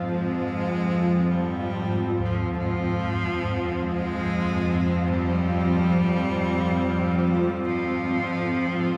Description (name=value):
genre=dark ambient drone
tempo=free time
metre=none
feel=none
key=F minor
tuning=A4 = 440 Hz
part: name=granular cloud pad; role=sustained chords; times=0.0-9.0 s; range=Ab2 to F4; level=-29 LUFS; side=equal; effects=built-in reverb, shimmer reverb
part: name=bowed-like drone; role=drone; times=0.0-9.0 s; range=F2 to F3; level=-28 LUFS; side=equal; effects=built-in reverb, phaser
part: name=bronze singing bowl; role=texture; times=0.0-9.0 s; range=none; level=barely audible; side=none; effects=none
part: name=clear cello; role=melody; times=0.1-9.0 s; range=F3 to Ab3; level=-32 LUFS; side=equal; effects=shimmer reverb, diffuse ambient delay
part: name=gamelan-type bossed gongs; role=arpeggios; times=2.2-9.0 s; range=Eb2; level=-44 LUFS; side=equal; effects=none
room=wet huge ambient reverb, RT60 8.2 s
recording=none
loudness=-24 LUFS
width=mono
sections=0.0-9.0 A section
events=none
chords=0.0 Fm